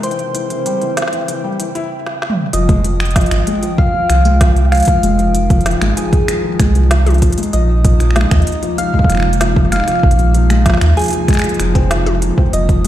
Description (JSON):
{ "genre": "IDM", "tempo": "96 BPM", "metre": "4/4", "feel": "straight", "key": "F minor", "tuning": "A4 = 440 Hz", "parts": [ { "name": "soft struck synth lead", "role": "melody", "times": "0.0-12.9 s", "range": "Ab4 to F5", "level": "-20 LUFS", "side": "equal", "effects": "chorus, tape echo" }, { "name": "warbly tape-like pad", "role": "sustained chords", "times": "0.0-12.9 s", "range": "C3 to G5", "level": "-23 LUFS", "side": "right 1 dB", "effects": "chorus, built-in reverb, sidechain pumping" }, { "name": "felt-muted upright piano", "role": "arpeggios", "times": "0.0-12.9 s", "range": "E3 to E4", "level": "-20 LUFS", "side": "left 4 dB", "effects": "ping-pong delay" }, { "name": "organic electronic drum kit", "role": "drums", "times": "0.0-12.9 s", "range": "finger snaps, hi-hat, snare drum, toms", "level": "-21 LUFS", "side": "right 1 dB", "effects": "overdrive" }, { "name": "bubbling stepped-filter texture", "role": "texture", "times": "0.0-1.9 s", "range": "G5", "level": "-33 LUFS", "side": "right 3 dB", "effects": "chorus, built-in reverb" }, { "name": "warm sub bass", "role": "bass", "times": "2.5-12.9 s", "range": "F1 to Eb2", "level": "-13 LUFS", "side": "equal", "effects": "none" }, { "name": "electronic kick drum", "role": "drums", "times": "2.7-12.8 s", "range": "none", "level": "-14 LUFS", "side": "equal", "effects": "overdrive" } ], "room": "light reverb", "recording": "played on a big sound system in a bare room, large studio reverb", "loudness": "-11 LUFS", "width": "side -12 dB against mid", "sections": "0.0-2.5 A section; 2.5-12.9 B section", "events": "filter sweep on drum 0.0-2.5; filter sweep on felt piano 0.0-2.5; drum fill 2.1-2.5", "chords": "0.0 C7b9; 2.5 Fm9; 7.5 Bb9sus4" }